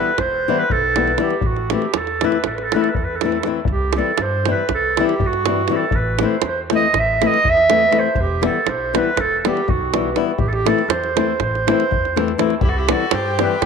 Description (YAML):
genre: balkan folk, Balkan wedding band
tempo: 241 BPM (eighths)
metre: 9/8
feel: straight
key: A minor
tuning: A4 = 440 Hz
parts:
  - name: warm clarinet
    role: melody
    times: 0.0-13.6 s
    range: F#4 to E5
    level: -19 LUFS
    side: right 3 dB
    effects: tape echo
  - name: flamenco guitar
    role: accompaniment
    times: 0.0-13.6 s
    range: E3 to E4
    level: -21 LUFS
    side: left 10 dB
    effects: none
  - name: upright bass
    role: bass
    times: 0.2-13.7 s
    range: E1 to G2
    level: -26 LUFS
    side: right 1 dB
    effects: none
  - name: davul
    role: percussion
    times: 0.2-13.7 s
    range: none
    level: -23 LUFS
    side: right 3 dB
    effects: none
  - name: rich violin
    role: second line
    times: 12.6-13.6 s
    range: E4 to G4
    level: -24 LUFS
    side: left 9 dB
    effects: none
room: wet spring reverb, RT60 1.8 s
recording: 1960s-style stereo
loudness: -16 LUFS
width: side -6 dB against mid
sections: 0.0-3.7 A section; 3.7-12.6 B section; 12.6-13.7 B section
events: none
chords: 0.0 Em; 1.4 Am; 3.7 C; 5.9 Am; 8.2 Em; 10.4 Am; 12.6 C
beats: 0.16 0.41 0.66 0.91 1.16 | 1.41 1.67 1.92 2.17 2.42 2.67 2.92 3.17 3.42 | 3.67 3.92 4.17 4.42 4.67 4.92 5.17 5.42 5.67 | 5.92 6.16 6.41 6.66 6.91 7.16 7.41 7.66 7.91 | 8.15 8.40 8.65 8.90 9.15 9.40 9.64 9.89 10.14 | 10.39 10.64 10.89 11.13 11.38 11.63 11.88 12.12 12.37 | 12.62 12.87 13.12 13.36 13.61